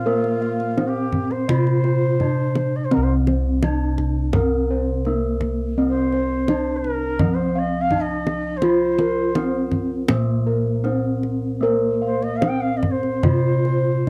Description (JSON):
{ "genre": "Javanese gamelan", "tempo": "83 BPM", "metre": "4/4", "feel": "uneven beats", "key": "C slendro", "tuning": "A4 = 441 Hz", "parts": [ { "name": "gamelan-type bronze metallophone", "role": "melody", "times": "0.0-14.1 s", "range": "Bb3-25c to F4", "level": "-27 LUFS", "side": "equal", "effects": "cassette tape" }, { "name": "bright reedy bansuri", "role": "second line", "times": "0.0-14.1 s", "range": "F4 to G5", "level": "-28 LUFS", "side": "equal", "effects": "cassette tape" }, { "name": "gamelan-type bossed gongs", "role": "bass", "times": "0.0-14.1 s", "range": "C2 to Bb4-25c", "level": "-24 LUFS", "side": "equal", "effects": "tube saturation" }, { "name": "gamelan-type bossed gongs", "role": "arpeggios", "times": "0.1-14.1 s", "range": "Bb4-25c to F5", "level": "-32 LUFS", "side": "equal", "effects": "cassette tape" }, { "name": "kendang", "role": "percussion", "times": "0.2-14.1 s", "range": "none", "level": "-25 LUFS", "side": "equal", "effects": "none" } ], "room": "light reverb", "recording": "home recording on cassette", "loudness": "-21 LUFS", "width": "mono", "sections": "0.0-14.1 A section", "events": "none", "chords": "none" }